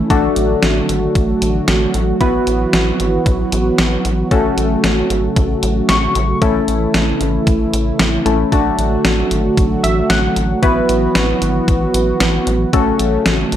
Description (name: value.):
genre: synth-pop.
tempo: 114 BPM.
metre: 4/4.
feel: straight.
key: unclear.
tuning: A4 = 441 Hz.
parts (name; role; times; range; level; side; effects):
warm analog keys; accompaniment; 0.0-13.6 s; A3 to C#6; -18 LUFS; left 3 dB; chorus.
brassy analog pad; sustained chords; 0.0-13.6 s; C#3 to F#4; -19 LUFS; right 3 dB; chorus.
rubbery square bass; bass; 0.0-13.6 s; G#1 to A1; -19 LUFS; equal; none.
detuned 8-bit digital drum machine; drums; 0.1-13.6 s; hi-hat, kick drum, snare drum; -17 LUFS; equal; gated reverb.
room: light reverb.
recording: none.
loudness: -13 LUFS.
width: side -10 dB against mid.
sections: 0.0-13.6 A section.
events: synth keys fill 5.6-6.4, 9.6-10.6.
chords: 0.1 D; 2.2 Esus2; 4.3 F#m; 6.4 A; 8.5 D; 10.6 Esus2; 12.7 F#m.